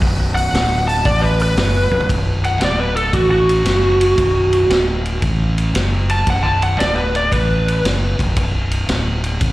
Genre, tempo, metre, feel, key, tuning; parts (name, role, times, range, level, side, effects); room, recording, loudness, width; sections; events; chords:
blues rock power trio and southern rock; 115 BPM; 4/4; swing 67% on 8ths; A4 = 441 Hz
bright tonewheel organ; sustained chords; 0.0-2.1 s; F#4 to D#5; -31 LUFS; right 4 dB; slow rotary speaker, overdrive, chorus vibrato
fuzz fingered electric bass; bass; 0.0-9.5 s; B0 to A1; -18 LUFS; equal; overdrive
vintage drum kit; drums; 0.0-9.5 s; hi-hat, kick drum, ride cymbal, snare drum, toms; -21 LUFS; equal
overdriven slide guitar; melody; 0.4-7.8 s; F#4 to A5; -17 LUFS; equal; slapback echo, tape echo
light reverb; live gig heard through the venue's PA, recital hall reverb; -14 LUFS; side -17 dB against mid
0.0-2.1 A section; 2.1-9.5 B section
electric slide guitar solo 0.0-2.1; drum fill 1.8
0.0 B; 2.1 B5